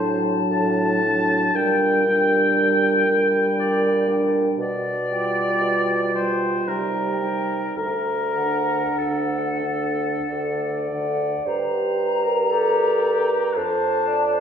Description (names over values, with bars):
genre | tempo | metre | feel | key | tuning
classical, slow romantic movement for wind quintet | 43-60 BPM | 3/4 | rubato | G minor | A4 = 440 Hz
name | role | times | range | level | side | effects
silver concert flute | melody | 0.0-14.4 s | F#5 to Bb5 | -28 LUFS | left 6 dB | none
warm oboe | second line | 0.0-14.4 s | D4 to A5 | -24 LUFS | left 2 dB | none
clear French horn | accompaniment | 0.0-14.4 s | D3 to Bb4 | -29 LUFS | equal | none
warm clarinet | accompaniment | 0.0-14.4 s | D4 to D5 | -26 LUFS | right 4 dB | none
dark bassoon | bass | 0.0-14.4 s | D2 to C3 | -23 LUFS | right 1 dB | none
room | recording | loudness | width
wet recital hall reverb, RT60 1.3 s | recorded in a church or concert hall | -19 LUFS | side -8 dB against mid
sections
0.0-11.5 A section; 11.5-14.4 B section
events
none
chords
0.0 D/A; 1.5 Gm/Bb; 4.6 G7/B; 6.7 Cm; 7.8 D; 11.5 Gm